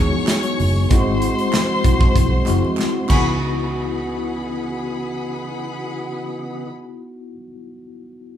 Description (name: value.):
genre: lush 1970s-style soul.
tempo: 96 BPM.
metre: 4/4.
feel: straight.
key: unclear.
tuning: A4 = 440 Hz.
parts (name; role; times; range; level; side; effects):
clear studio string section; second line; 0.0-6.7 s; G#4 to C#6; -26 LUFS; left 2 dB; none.
mellow tine electric piano; accompaniment; 0.0-8.4 s; G#3 to G#4; -24 LUFS; left 2 dB; medium stereo tremolo.
percussive tonewheel organ; sustained chords; 0.0-6.7 s; C#3 to D#5; -30 LUFS; right 2 dB; slow rotary speaker.
vintage muted fingered electric bass; bass; 0.0-7.3 s; F#1 to C#2; -22 LUFS; equal; none.
celesta; texture; 0.0-7.3 s; G#5 to C#6; -33 LUFS; right 6 dB; none.
congas; percussion; 0.1-3.7 s; none; -31 LUFS; right 1 dB; none.
modern studio drum kit; drums; 0.3-3.2 s; crash cymbal, hi-hat, kick drum, snare drum; -20 LUFS; equal; none.
group handclap; percussion; 0.3-3.7 s; none; -35 LUFS; right 5 dB; none.
room: moderate large studio reverb, RT60 0.9 s.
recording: band playing live in one room.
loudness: -17 LUFS.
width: side -10 dB against mid.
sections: 0.0-3.4 A section; 3.4-5.9 B section.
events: drum fill 2.8-3.4.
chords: 0.0 Emaj7; 0.9 G#7alt; 3.1 C#m11.